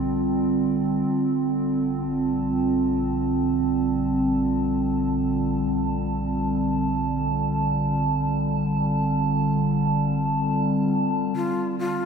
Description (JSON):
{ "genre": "ambient", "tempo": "free time", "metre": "none", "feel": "none", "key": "Bb major", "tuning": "A4 = 439 Hz", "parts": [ { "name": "warbly tape-like pad", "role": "sustained chords", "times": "0.0-12.1 s", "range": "D3 to A5", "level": "-21 LUFS", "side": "right 1 dB", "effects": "chorus, built-in reverb" }, { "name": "warm sub bass", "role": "bass", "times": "0.0-12.1 s", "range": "Bb1", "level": "-34 LUFS", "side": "left 1 dB", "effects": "none" }, { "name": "breathy bright long shakuhachi", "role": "melody", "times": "11.4-12.1 s", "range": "F4", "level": "-26 LUFS", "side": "left 1 dB", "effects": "none" } ], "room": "wet huge ambient reverb, RT60 8.5 s", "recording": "none", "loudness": "-21 LUFS", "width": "side -6 dB against mid", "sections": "0.0-11.4 A section", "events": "fade-out on sub bass 0.0-11.4", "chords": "0.0 Bbmaj7" }